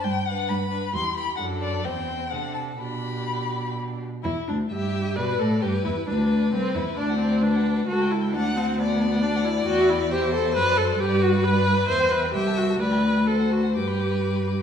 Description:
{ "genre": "quick classical-period movement for string quartet", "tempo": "122-137 BPM", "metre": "3/4", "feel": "rubato", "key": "G major", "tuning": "A4 = 437 Hz", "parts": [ { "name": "warm violin", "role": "melody", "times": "0.0-14.6 s", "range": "C4 to D6", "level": "-32 LUFS", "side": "left 5 dB", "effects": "none" }, { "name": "warm violin", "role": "second line", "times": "0.0-14.6 s", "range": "G4 to F#5", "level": "-30 LUFS", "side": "left 6 dB", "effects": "none" }, { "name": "warm viola", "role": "accompaniment", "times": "0.0-14.6 s", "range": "B3 to C5", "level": "-26 LUFS", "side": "right 1 dB", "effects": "none" }, { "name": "rich cello", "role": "bass", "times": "0.0-14.6 s", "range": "C2 to C3", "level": "-25 LUFS", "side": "equal", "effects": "none" } ], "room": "wet recital hall reverb, RT60 1.5 s", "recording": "none", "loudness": "-21 LUFS", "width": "side -8 dB against mid", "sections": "0.0-4.3 A section; 4.3-14.6 A section", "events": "none", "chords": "0.0 G; 0.9 Em; 1.4 D/F#; 1.9 C/E; 2.3 D7/C; 2.8 G/B; 4.3 G5; 5.2 D5; 5.6 G; 7.0 D; 7.9 A7/C#; 8.3 D; 9.7 C/E; 10.6 D7/F#; 11.0 G; 11.9 Em; 12.3 Am7/C; 12.8 G/D; 13.3 D7; 13.8 G", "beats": "| 0.05 0.50 0.95 | 1.40 1.85 2.33 | 2.81 3.29 3.77 | 4.25 4.71 5.17 | 5.62 6.08 6.53 | 6.99 7.44 7.89 | 8.33 8.78 9.23 | 9.67 10.12 10.56 | 11.00 11.44 11.89 | 12.35 12.80 13.27 | 13.76 14.25" }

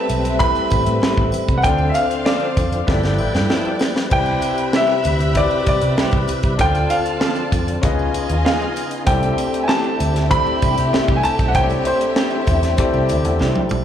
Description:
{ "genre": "lush 1970s-style soul", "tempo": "97 BPM", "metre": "4/4", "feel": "straight", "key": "C major", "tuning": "A4 = 440 Hz", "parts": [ { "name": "clear baby grand piano", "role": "melody", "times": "0.0-13.1 s", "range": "C5 to B5", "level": "-21 LUFS", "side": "right 1 dB", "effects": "slapback echo" }, { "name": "warm studio string section", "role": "second line", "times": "0.0-13.8 s", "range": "A3 to B5", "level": "-25 LUFS", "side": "left 1 dB", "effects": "slapback echo" }, { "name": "clear grand piano", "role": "accompaniment", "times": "0.0-13.8 s", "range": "B3 to F5", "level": "-24 LUFS", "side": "left 5 dB", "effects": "slapback echo" }, { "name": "percussive tonewheel organ", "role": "sustained chords", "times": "0.0-13.8 s", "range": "C3 to B4", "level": "-26 LUFS", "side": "equal", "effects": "slow rotary speaker, overdrive, chorus vibrato" }, { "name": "vintage muted fingered electric bass", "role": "bass", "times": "0.1-13.8 s", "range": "G1 to C3", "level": "-20 LUFS", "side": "equal", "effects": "none" }, { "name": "tight funk drum kit", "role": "drums", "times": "0.1-13.8 s", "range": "crash cymbal, hi-hat, kick drum, snare drum, toms", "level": "-21 LUFS", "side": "equal", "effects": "none" }, { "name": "triangle", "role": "percussion", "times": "0.1-13.8 s", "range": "none", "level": "-41 LUFS", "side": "right 4 dB", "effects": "none" }, { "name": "electric guitar through a small old amp", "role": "riff", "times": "1.0-13.6 s", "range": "E3 to B4", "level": "-27 LUFS", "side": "right 4 dB", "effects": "slapback echo" } ], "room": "light reverb, small room ambience", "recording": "live gig heard through the venue's PA, club reverb", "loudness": "-15 LUFS", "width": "side -9 dB against mid", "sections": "0.0-13.8 A section", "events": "drum fill 2.9-4.1, 13.4-13.8", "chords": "0.0 Am9; 1.6 Dm7; 2.9 G13; 4.1 Cmaj7; 6.6 Dm7; 7.8 Db9; 9.1 C69", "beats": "0.40 1.02 | 1.64 2.26 2.88 3.50 | 4.12 4.74 5.36 5.98 | 6.59 7.21 7.83 8.45 | 9.07 9.69 10.31 10.93 | 11.55 12.17 12.79 13.41" }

